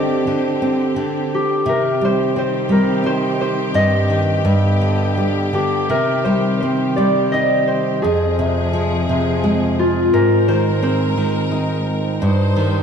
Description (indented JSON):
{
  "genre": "children's music, lullaby",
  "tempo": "86 BPM",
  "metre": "3/4",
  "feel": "rubato",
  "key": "C minor",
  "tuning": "A4 = 441 Hz",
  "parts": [
    { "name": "concert harp", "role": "melody", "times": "0.0-12.8 s", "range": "F4 to Eb5", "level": "-20 LUFS", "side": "left 1 dB", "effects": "none" },
    { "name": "nylon-string guitar", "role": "accompaniment", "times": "0.0-12.8 s", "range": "F2 to Eb4", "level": "-18 LUFS", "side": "right 1 dB", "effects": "none" },
    { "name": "rich symphonic string section", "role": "sustained chords", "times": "0.0-12.8 s", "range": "G2 to C5", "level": "-23 LUFS", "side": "left 2 dB", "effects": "none" }
  ],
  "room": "wet scoring stage reverb, RT60 1.8 s",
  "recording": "dark, warm production",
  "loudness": "-15 LUFS",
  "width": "side -7 dB against mid",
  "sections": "0.0-12.8 A section",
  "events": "none",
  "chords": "0.0 Gsus4/D; 1.7 Cm; 3.7 Cm/G; 4.5 G; 5.9 Cm; 8.0 Fm; 10.1 Abadd9; 12.2 Cm/G"
}